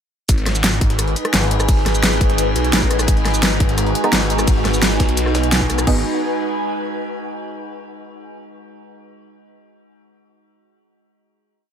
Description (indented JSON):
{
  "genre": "dark technical drum and bass",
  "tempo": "172 BPM",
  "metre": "4/4",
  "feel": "straight",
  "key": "G# minor",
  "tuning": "A4 = 440 Hz",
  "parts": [
    { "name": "metallic inharmonic drone", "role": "sustained chords", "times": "0.8-6.0 s", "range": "G#3 to G#4", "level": "-25 LUFS", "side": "equal", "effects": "chorus, built-in reverb, sidechain pumping" },
    { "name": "phased detuned saw bass", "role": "bass", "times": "0.3-6.0 s", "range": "G#1 to B1", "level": "-19 LUFS", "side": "equal", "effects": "phaser, overdrive, sidechain pumping" },
    { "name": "breakbeat sampler-style drum kit", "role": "drums", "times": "0.3-5.8 s", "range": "hi-hat, snare drum", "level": "-30 LUFS", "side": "equal", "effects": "none" },
    { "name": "dubstep drum kit", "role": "drums", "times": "0.3-5.9 s", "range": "crash cymbal, hi-hat, rim click, shaker, snare drum", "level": "-19 LUFS", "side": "equal", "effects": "overdrive" },
    { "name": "electronic kick drum", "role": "drums", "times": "0.3-5.9 s", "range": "none", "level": "-17 LUFS", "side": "equal", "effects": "none" },
    { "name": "airy breathy pad", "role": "texture", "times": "0.3-7.2 s", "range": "D#4 to G#5", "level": "-24 LUFS", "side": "equal", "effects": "chorus, phaser, sidechain pumping" },
    { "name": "filtered dub chord stab", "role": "stabs", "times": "4.0-6.0 s", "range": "G#3 to D#4", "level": "-25 LUFS", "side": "right 4 dB", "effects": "none" }
  ],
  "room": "light reverb, digital ambience",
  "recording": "none",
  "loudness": "-15 LUFS",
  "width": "side -8 dB against mid",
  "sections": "0.3-5.9 drop; 5.9-7.3 final chord",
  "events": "drop 0.3-5.9",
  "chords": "0.3 G#m",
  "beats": "| 0.29 0.64 0.99 1.34 | 1.69 2.03 2.38 2.73 | 3.08 3.43 3.78 4.13 | 4.48 4.83 5.17 5.52 | 5.87 6.22 6.57 6.92"
}